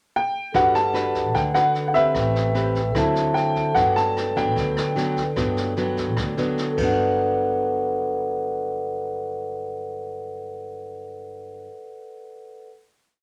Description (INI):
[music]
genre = bossa nova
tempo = 150 BPM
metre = 4/4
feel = straight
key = G major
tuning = A4 = 442 Hz
[part]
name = warm grand piano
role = melody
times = 0.2-6.5 s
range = E5 to A5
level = -25 LUFS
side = equal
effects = none
[part]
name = nylon-string guitar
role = accompaniment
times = 0.5-11.7 s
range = G2 to B4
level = -29 LUFS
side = equal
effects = none
[part]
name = vibraphone with soft mallets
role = accompaniment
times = 0.5-12.7 s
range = A4 to A5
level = -28 LUFS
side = equal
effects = none
[part]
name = upright bass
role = bass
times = 0.5-11.6 s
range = G1 to D2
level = -33 LUFS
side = equal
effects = none
[part]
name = jazz brush drum kit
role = drums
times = 0.5-6.9 s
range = crash cymbal, kick drum, rim click, snare drum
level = -35 LUFS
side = equal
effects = none
[sound]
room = wet small room reverb, RT60 0.6 s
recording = none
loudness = -23 LUFS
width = mono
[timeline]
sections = 0.0-0.6 pickup bar; 0.6-7.0 A section; 7.0-10.2 final hit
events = none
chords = 0.0 N.C.; 0.6 Gmaj7; 2.2 Am9; 3.0 D9; 3.8 Gmaj7